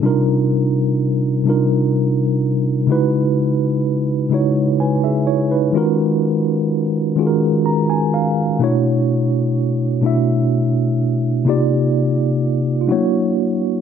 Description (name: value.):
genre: R&B.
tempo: 42 BPM (dotted quarters).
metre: 6/8.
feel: straight.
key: unclear.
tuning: A4 = 441 Hz.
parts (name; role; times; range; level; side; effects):
mellow tine electric piano; solo; 0.0-13.8 s; B2 to A#5; -15 LUFS; equal; medium stereo tremolo.
room: moderate echo chamber reverb, RT60 2.3 s.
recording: dark, warm production.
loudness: -15 LUFS.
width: side -8 dB against mid.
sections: 0.0-13.8 A section.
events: tine electric piano fill 7.2-8.6.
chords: 0.0 Cm11; 2.9 C#m11; 5.7 D#m11; 8.6 Bm11; 11.5 Cm11; 12.9 F#7b13.